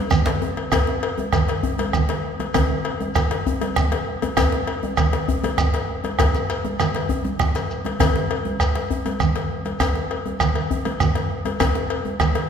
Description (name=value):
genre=west african traditional, West African drum ensemble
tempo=132 BPM (dotted quarters)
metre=12/8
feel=straight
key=none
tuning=none
part: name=bombo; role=percussion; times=0.1-12.3 s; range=none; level=-23 LUFS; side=right 2 dB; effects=none
part: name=congas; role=percussion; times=0.1-12.4 s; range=none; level=-26 LUFS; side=right 5 dB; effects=none
part: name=shekere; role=percussion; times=0.1-12.3 s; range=none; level=-32 LUFS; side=left 1 dB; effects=none
part: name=cowbell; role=percussion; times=0.3-12.5 s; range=none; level=-26 LUFS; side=left 5 dB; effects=none
part: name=djembe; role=percussion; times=0.3-12.5 s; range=none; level=-28 LUFS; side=left 4 dB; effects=none
room=wet concert hall reverb, RT60 1.9 s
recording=minimal, uncompressed stereo recording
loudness=-19 LUFS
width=side -7 dB against mid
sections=0.7-12.5 A section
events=none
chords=none